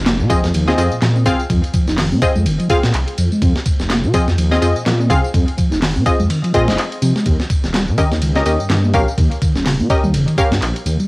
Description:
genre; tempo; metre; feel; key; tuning
breakbeat, breaks; 125 BPM; 4/4; swing 57% on 16ths; F minor; A4 = 440 Hz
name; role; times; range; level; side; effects
dark detuned saw bass; bass; 0.0-11.0 s; Eb1 to C3; -18 LUFS; equal; tube saturation
impact; sound effects; 0.0-1.5 s; none; -30 LUFS; equal; none
mellow tonewheel organ; riff; 0.1-11.1 s; Db3 to Eb4; -20 LUFS; equal; chorus vibrato, fast rotary speaker
breakbeat sampler-style drum kit; drums; 0.1-11.0 s; hi-hat, kick drum, ride cymbal, snare drum; -18 LUFS; equal; cassette tape
electronic handclaps and tambourine; drums; 0.1-11.1 s; none; -28 LUFS; equal; cassette tape
filtered dub chord stab; stabs; 0.3-10.5 s; C4 to F5; -19 LUFS; left 1 dB; chorus, analog delay
room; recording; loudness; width
light reverb; home recording on cassette, vinyl crackle; -13 LUFS; side -23 dB against mid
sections
0.0-11.1 A section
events
impact 0.0-1.5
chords
0.0 Fm7; 7.3 Eb7

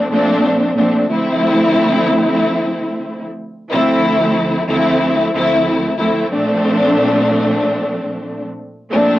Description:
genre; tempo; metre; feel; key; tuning
hip hop; 92 BPM; 4/4; swing 61% on 16ths; D minor; A4 = 440 Hz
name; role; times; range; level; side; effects
warm studio string section; solo; 0.0-9.2 s; D2 to E4; -13 LUFS; equal; cassette tape, high-pass filter, low-pass filter
room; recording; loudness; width
light reverb; dry, gritty hardware recording; -13 LUFS; side -15 dB against mid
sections
0.0-9.2 A section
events
none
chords
0.0 Bbmaj7; 1.1 Dm7; 6.3 Bbmaj7

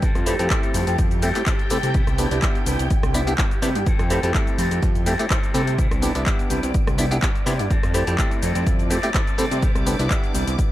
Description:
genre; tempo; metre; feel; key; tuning
filtered disco house; 125 BPM; 4/4; swing 54% on 16ths; C major; A4 = 440 Hz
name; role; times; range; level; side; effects
phased string machine; sustained chords; 0.0-10.7 s; G4 to D6; -31 LUFS; equal; ensemble chorus, phaser, sidechain pumping
electric guitar with an envelope filter; riff; 0.0-10.7 s; G3 to A4; -30 LUFS; left 3 dB; sidechain pumping, analog delay
fat analog bass; bass; 0.0-10.7 s; C2 to C3; -24 LUFS; equal; sidechain pumping
electronic kick drum; drums; 0.0-10.7 s; none; -22 LUFS; equal; none
house drum kit; drums; 0.0-10.7 s; handclaps, hi-hat, rim click, shaker; -28 LUFS; left 1 dB; sidechain pumping on hats, sidechain pumping on perc
clav; accompaniment; 0.3-10.7 s; A3 to G4; -26 LUFS; equal; phaser, vintage 12-bit sampler grit, sidechain pumping, analog delay
room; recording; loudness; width
light reverb; echo-heavy mix; -18 LUFS; side -14 dB against mid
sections
0.0-10.7 A section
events
none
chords
0.0 Fmaj9; 1.9 Cmaj7; 3.9 Fmaj9; 5.8 Cmaj7; 7.7 Fmaj9; 9.6 Cmaj7

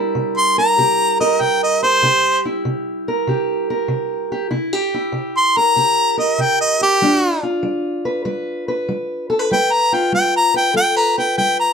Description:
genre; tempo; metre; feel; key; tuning
acoustic country blues, solo or duo; 96 BPM; 4/4; swing 67% on 8ths; C mixolydian; A4 = 440 Hz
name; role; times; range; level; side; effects
fingerpicked steel-string acoustic guitar; accompaniment; 0.0-11.7 s; C3 to B4; -19 LUFS; right 2 dB; none
clear harmonica; melody; 0.4-11.7 s; G4 to C6; -14 LUFS; left 1 dB; none
room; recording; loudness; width
moderate studio reverb, RT60 0.6 s; none; -15 LUFS; side -6 dB against mid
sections
0.0-11.7 A section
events
none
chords
0.0 C7; 7.0 G7

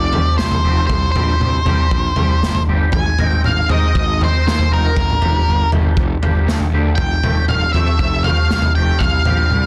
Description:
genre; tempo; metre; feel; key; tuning
quiet-loud alternative rock; 118 BPM; 4/4; straight; unclear; A4 = 441 Hz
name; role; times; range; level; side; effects
octave-fuzz lead guitar; melody; 0.0-9.7 s; Bb4 to Ab5; -22 LUFS; equal; distortion
fuzz fingered electric bass; bass; 0.0-9.7 s; F1 to Ab2; -24 LUFS; equal; overdrive
twangy electric guitar; arpeggios; 0.1-9.6 s; F3 to Bb4; -29 LUFS; equal; ensemble chorus, analog delay
raw garage drum kit; drums; 0.1-9.6 s; kick drum, snare drum, toms; -18 LUFS; equal; none
room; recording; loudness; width
light reverb; dense, heavily limited modern master; -16 LUFS; mono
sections
0.0-9.7 A section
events
none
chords
0.0 Fadd9; 0.9 Csus4; 2.9 Abadd9; 5.0 Gm7; 7.0 Fadd9; 9.0 Csus4

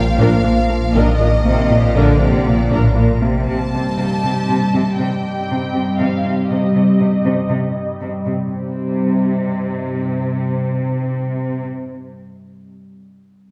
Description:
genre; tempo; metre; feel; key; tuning
cinematic, hybrid orchestral and electronic film score; 119 BPM; 5/4; straight; C dorian; A4 = 436 Hz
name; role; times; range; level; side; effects
warm symphonic violin section; melody; 0.0-11.6 s; C5 to A5; -28 LUFS; equal; low-pass filter
warm symphonic violin section; second line; 0.0-3.0 s; D5 to F5; -29 LUFS; equal; none
rich symphonic viola section; accompaniment; 0.0-3.0 s; F3 to Bb4; -26 LUFS; equal; low-pass filter
clear French horn section; sustained chords; 0.0-3.0 s; D3 to F3; -28 LUFS; equal; none
soft additive organ-like pad; sustained chords; 0.0-11.6 s; F3 to F5; -23 LUFS; equal; ensemble chorus, built-in reverb, phaser, low-pass filter
rubbery square bass; riff; 0.0-3.4 s; Bb2 to Bb3; -22 LUFS; equal; low-pass filter
rich symphonic cello section; bass; 0.0-11.6 s; A2 to D3; -22 LUFS; equal; none
rich symphonic double bass section; bass; 0.0-2.8 s; Bb1; -25 LUFS; equal; none
warm sub bass; bass; 0.0-3.5 s; Bb1; -23 LUFS; equal; none
room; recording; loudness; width
wet scoring stage reverb, RT60 1.7 s; heard from further back in the room; -17 LUFS; mono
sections
0.0-3.5 A section; 3.5-8.5 B section; 8.5-11.0 C section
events
filter sweep 3.5-8.5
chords
0.0 Bb; 3.5 Cm

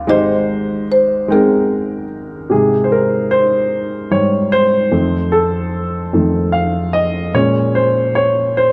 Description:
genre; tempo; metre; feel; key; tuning
gospel; 50 BPM (dotted quarters); 6/8; straight; Ab major; A4 = 438 Hz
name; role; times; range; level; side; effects
marimba with medium mallets; melody; 0.0-2.5 s; C4 to F5; -18 LUFS; equal; none
warm baby grand piano; accompaniment; 0.0-8.7 s; Ab1 to G5; -16 LUFS; equal; none
room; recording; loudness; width
moderate echo chamber reverb, RT60 1.9 s; none; -15 LUFS; mono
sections
0.0-2.5 A section; 2.5-8.7 B section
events
grand piano solo 2.5-8.7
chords
0.1 Abmaj7; 4.9 F7; 7.3 Bbm7

